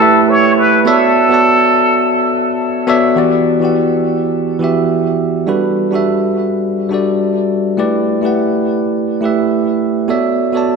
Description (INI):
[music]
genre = chillout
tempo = 104 BPM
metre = 4/4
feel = swing 58% on 16ths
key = E dorian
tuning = A4 = 441 Hz
[part]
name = trumpet with plunger mute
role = melody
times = 0.0-2.6 s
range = A4 to C#5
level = -13 LUFS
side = left 1 dB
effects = vintage 12-bit sampler grit, diffuse ambient delay
[part]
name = bell-like tine electric piano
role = accompaniment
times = 0.0-10.8 s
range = E3 to A5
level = -12 LUFS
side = moving between left 4 dB and right 6 dB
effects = auto-pan, diffuse ambient delay
[sound]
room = wet plate reverb, RT60 2.4 s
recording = dreamy mix soaked in reverb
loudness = -11 LUFS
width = side -4 dB against mid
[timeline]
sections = 0.0-3.2 A section; 3.2-10.8 B section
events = none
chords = 0.0 A9sus4; 0.9 Bm11; 3.2 Em9; 5.5 Gmaj9; 7.8 A9sus4; 10.1 Bm11